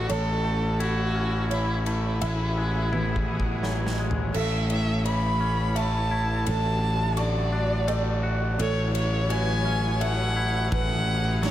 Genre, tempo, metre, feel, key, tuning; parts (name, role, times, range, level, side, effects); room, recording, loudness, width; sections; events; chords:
post-rock; 85 BPM; 3/4; straight; A major; A4 = 443 Hz
warm violin; melody; 0.0-11.5 s; E4 to B5; -30 LUFS; equal; analog delay
bright studio string section; sustained chords; 0.0-11.5 s; F#3 to C#5; -36 LUFS; left 2 dB
felt-muted upright piano; arpeggios; 0.0-11.5 s; D4 to C#6; -36 LUFS; right 5 dB; wide subtle chorus, analog delay
twangy electric guitar; arpeggios; 0.0-11.5 s; A2 to F#4; -33 LUFS; left 1 dB; spring reverb, analog delay
fuzz picked electric bass; bass; 0.0-11.5 s; A1; -26 LUFS; equal; overdrive
big rock drum kit; drums; 0.1-11.5 s; crash cymbal, kick drum, ride cymbal, snare drum, toms; -35 LUFS; equal
light reverb, small room ambience; -23 LUFS; side -12 dB against mid
0.0-4.3 A section; 4.3-11.5 B section
drum fill 2.9-4.3
0.1 A; 2.2 Eadd9/A; 4.3 A; 6.5 D/A; 8.6 A; 10.7 Eadd9/A